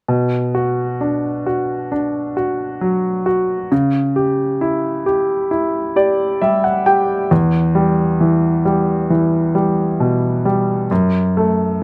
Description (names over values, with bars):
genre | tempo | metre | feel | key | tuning
pop | 67 BPM | 4/4 | straight | B minor | A4 = 439 Hz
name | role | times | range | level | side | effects
clear concert grand piano | accompaniment | 0.1-11.8 s | E2 to G5 | -17 LUFS | equal | none
room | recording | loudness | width
light reverb | recorded outdoors, with no room sound | -17 LUFS | mono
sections
0.1-11.8 A section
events
grand piano fill 5.5-7.3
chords
0.1 Bm; 3.7 C#dim; 7.3 Em; 10.9 F#m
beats
| 0.08 0.99 1.91 2.81 | 3.72 4.62 5.51 6.41 | 7.31 8.20 9.10 10.00 | 10.90 11.81